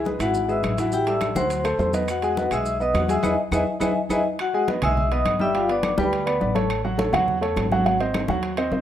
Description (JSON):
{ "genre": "latin, salsa", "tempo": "208 BPM", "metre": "4/4", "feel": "straight", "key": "E major", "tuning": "A4 = 440 Hz", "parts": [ { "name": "vibraphone with medium mallets", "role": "melody", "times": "0.0-6.5 s", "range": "F4 to E6", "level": "-24 LUFS", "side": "left 3 dB", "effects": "none" }, { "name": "clear grand piano", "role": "accompaniment", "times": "0.0-8.8 s", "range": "E3 to G#5", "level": "-24 LUFS", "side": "right 1 dB", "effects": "none" }, { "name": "upright bass", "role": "bass", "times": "0.0-8.8 s", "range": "G1 to E2", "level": "-28 LUFS", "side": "right 1 dB", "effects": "none" }, { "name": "congas", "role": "percussion", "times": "0.1-8.8 s", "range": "none", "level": "-29 LUFS", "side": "left 3 dB", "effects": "none" }, { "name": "maracas", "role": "percussion", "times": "0.1-4.2 s", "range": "none", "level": "-43 LUFS", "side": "right 4 dB", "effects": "none" }, { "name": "claves", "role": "percussion", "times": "0.2-8.7 s", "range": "none", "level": "-36 LUFS", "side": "left 1 dB", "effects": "none" }, { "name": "timbales", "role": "percussion", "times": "0.2-8.7 s", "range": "none", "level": "-35 LUFS", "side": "right 8 dB", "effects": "none" } ], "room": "studio reverb", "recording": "rough home demo mix", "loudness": "-20 LUFS", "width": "side -10 dB against mid", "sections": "0.0-4.4 A section; 4.4-8.8 A section", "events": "band accent 3.2-4.4; drum fill 3.5-4.4", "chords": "0.0 C#m7; 0.9 Am7; 1.5 D9; 2.1 Emaj7; 5.5 Gadd9; 6.7 A6; 7.9 G#7", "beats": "0.06 0.34 0.63 | 0.92 1.21 1.50 1.79 | 2.08 2.37 2.66 2.95 | 3.23 3.52 3.81 4.10 | 4.39 4.68 4.97 5.26 | 5.54 5.83 6.12 6.41 | 6.70 6.99 7.28 7.57 | 7.86 8.14 8.43 8.72" }